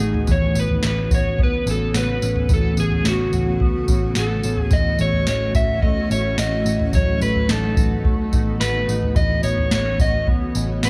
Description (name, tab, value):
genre	dream pop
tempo	108 BPM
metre	4/4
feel	straight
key	A lydian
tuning	A4 = 437 Hz
part	electric slide guitar	melody	0.0-10.9 s	F#4 to E5	-26 LUFS	equal	tape echo
part	granular cloud pad	sustained chords	0.0-10.9 s	C#3 to F#4	-31 LUFS	equal	built-in reverb
part	mellow electric guitar	arpeggios	0.0-10.9 s	E3 to F#4	-28 LUFS	equal	ensemble chorus
part	vintage muted picked electric bass	bass	0.0-10.9 s	A1	-26 LUFS	equal	none
part	soft vintage rhythm box	drums	0.0-10.9 s	kick drum, snare drum, tambourine, toms	-23 LUFS	equal	overdrive
room	light reverb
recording	none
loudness	-19 LUFS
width	mono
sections	0.3-10.9 A section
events	none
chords	0.3 A69; 4.7 F#m7/A; 6.9 B7/A; 9.2 A69